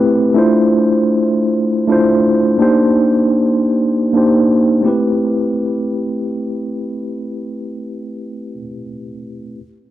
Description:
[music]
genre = chillout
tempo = 107 BPM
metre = 4/4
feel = straight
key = A minor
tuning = A4 = 440 Hz
[part]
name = mellow tine electric piano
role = accompaniment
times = 0.0-9.6 s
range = A3 to C5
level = -13 LUFS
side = equal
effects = auto-pan, low-pass filter, analog delay
[sound]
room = wet recital hall reverb, RT60 1.3 s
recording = dry, gritty hardware recording, cassette tape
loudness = -12 LUFS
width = side -13 dB against mid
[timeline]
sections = 0.0-4.8 A section; 4.8-7.1 B section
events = filter sweep on tine electric piano 0.0-4.8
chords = 0.4 Dm9; 2.6 Cm9; 4.8 Am9

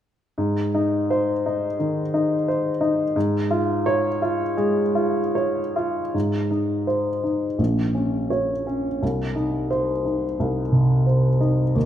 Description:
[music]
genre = classical, romantic character piece for solo piano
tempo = 72-90 BPM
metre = 4/4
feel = rubato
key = Ab major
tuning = A4 = 436 Hz
[part]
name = clear upright piano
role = solo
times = 0.4-11.9 s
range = Bb1 to Db5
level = -20 LUFS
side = equal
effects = none
[sound]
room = moderate recital hall reverb, RT60 1.5 s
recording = none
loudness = -20 LUFS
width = side -10 dB against mid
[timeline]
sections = 0.4-6.1 A section; 6.1-11.9 B section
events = none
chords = 0.4 Ab; 3.1 Db/Ab; 6.1 Ab; 7.6 Bbm; 9.0 Cm

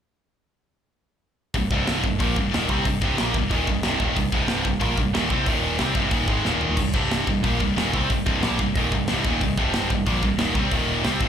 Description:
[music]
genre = heavy metal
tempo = 183 BPM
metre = 4/4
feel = straight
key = C minor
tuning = A4 = 442 Hz
[part]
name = heavy high-gain guitar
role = riff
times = 1.5-11.3 s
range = C2 to C4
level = -25 LUFS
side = left 13 dB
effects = distortion, slapback echo
[part]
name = growling picked electric bass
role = bass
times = 1.5-11.3 s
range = C1 to C2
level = -27 LUFS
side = equal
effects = overdrive
[part]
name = tight metal drum kit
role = drums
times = 1.5-11.3 s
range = crash cymbal, hi-hat, kick drum, snare drum, toms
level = -26 LUFS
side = equal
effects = none
[part]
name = tight distorted guitar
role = riff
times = 1.6-11.3 s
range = C2 to C4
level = -25 LUFS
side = right 11 dB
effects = distortion, slapback echo
[sound]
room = little or no reverb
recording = live gig heard through the venue's PA, club reverb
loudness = -20 LUFS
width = side -8 dB against mid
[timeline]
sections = 1.5-11.3 A section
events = drum fill 6.5-6.8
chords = 1.5 Cm; 5.5 Eb5; 5.8 Cm; 6.5 Eb5; 6.8 Cm; 10.7 Eb5

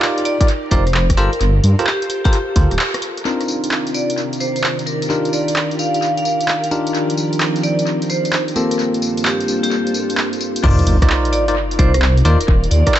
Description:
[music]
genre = UK garage, two-step garage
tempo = 130 BPM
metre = 4/4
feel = swing 67% on 16ths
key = unclear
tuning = A4 = 440 Hz
[part]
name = soft string machine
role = sustained chords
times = 0.0-13.0 s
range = G2 to D5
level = -25 LUFS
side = equal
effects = ensemble chorus, sidechain pumping
[part]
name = bell-like tine electric piano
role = stabs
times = 0.0-12.9 s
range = Bb3 to D5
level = -21 LUFS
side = moving between left 4 dB and right 3 dB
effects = auto-pan, dub echo
[part]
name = punchy analog drum machine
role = drums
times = 0.0-13.0 s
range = crash cymbal, handclaps, hi-hat, rim click, tambourine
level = -22 LUFS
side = equal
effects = tape echo
[part]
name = vibraphone with hard mallets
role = melody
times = 0.3-12.9 s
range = G4 to F5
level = -22 LUFS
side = right 1 dB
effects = tape echo
[part]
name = electronic kick drum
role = drums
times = 0.4-2.7, 10.6-12.9 s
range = none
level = -15 LUFS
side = equal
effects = none
[part]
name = dark detuned saw bass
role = bass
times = 0.7-2.8, 10.6-12.8 s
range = D1 to G2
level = -14 LUFS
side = equal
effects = sidechain pumping
[part]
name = sub drop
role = sound effects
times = 10.6-12.5 s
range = none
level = -20 LUFS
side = equal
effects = none
[sound]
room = light reverb, digital ambience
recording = echo-heavy mix, vinyl crackle, nothing above 8.0 kHz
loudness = -14 LUFS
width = side -12 dB against mid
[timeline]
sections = 0.0-3.3 A section; 3.3-10.6 B section; 10.6-13.0 C section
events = break 2.8-3.3; band accent 2.8; drop 10.6-13.0; impact 10.6-12.5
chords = 0.0 F13sus4; 1.2 Gm11; 3.3 Cm11; 5.1 Ebmaj9; 6.7 F13sus4; 8.6 Gm11; 10.6 Cm11; 12.5 Ebmaj9

